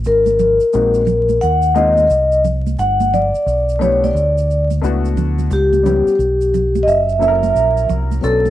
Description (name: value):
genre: hip hop, jazz-hop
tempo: 88 BPM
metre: 4/4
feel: swing 63% on 16ths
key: unclear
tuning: A4 = 438 Hz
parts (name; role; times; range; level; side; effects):
- deep dub fingered electric bass; bass; 0.0-8.5 s; F#1 to D#2; -18 LUFS; equal; none
- tube shaker and congas; percussion; 0.0-8.5 s; none; -25 LUFS; right 7 dB; none
- vibraphone with soft mallets; melody; 0.1-8.5 s; G4 to F#5; -14 LUFS; left 1 dB; none
- dark upright piano; accompaniment; 0.7-8.5 s; F#3 to A#4; -22 LUFS; left 6 dB; none
room: wet spring reverb, RT60 1.2 s, small room ambience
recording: 1960s-style stereo with parts hard left and right, vinyl crackle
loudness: -13 LUFS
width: side -13 dB against mid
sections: 0.0-8.5 A section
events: none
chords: 0.1 G#add9; 2.8 G69; 5.5 C#m7b5; 6.9 F#7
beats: | 0.05 0.73 1.41 2.10 | 2.78 3.46 4.14 4.82 | 5.50 6.19 6.87 7.55 | 8.23